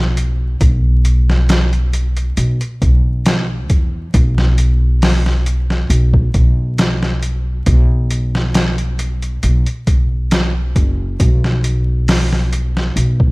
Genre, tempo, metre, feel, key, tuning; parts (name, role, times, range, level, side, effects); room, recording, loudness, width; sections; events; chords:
trip hop; 68 BPM; 4/4; swing 53% on 16ths; A4 = 440 Hz
upright bass; bass; 0.0-13.3 s; F#1 to E2; -14 LUFS; equal
trip hop sampler-style drum kit; drums; 0.2-13.3 s; hi-hat, kick drum, snare drum; -16 LUFS; equal; overdrive, studio reverb
digital ambience; vinyl crackle, faint mains hum; -13 LUFS; side -26 dB against mid
0.0-13.3 A section